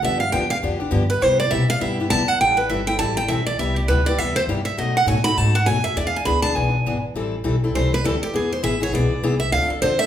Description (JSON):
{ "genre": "acoustic string swing (jazz manouche)", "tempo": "202 BPM", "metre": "4/4", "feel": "swing 59% on 8ths", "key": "A minor", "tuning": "A4 = 440 Hz", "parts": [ { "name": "picked steel-string acoustic guitar", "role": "melody", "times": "0.0-10.1 s", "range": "G4 to B5", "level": "-20 LUFS", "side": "right 2 dB", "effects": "none" }, { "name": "picked steel-string acoustic guitar", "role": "accompaniment", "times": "0.0-10.1 s", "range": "B2 to A4", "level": "-24 LUFS", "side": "left 3 dB", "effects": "none" }, { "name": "upright bass", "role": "bass", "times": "0.0-10.1 s", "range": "G1 to C3", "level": "-23 LUFS", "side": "equal", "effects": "none" } ], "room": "wet large studio reverb, RT60 0.8 s", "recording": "band playing live in one room", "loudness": "-18 LUFS", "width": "side -10 dB against mid", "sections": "0.0-2.4 A section; 2.4-10.1 A section", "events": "steel-string acoustic guitar solo 0.0-10.1", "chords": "0.0 G7; 1.2 Cmaj7; 2.4 Am7; 3.6 Cmaj7; 4.8 B7; 6.0 E7; 7.1 Am7; 8.3 E; 9.5 Dm7" }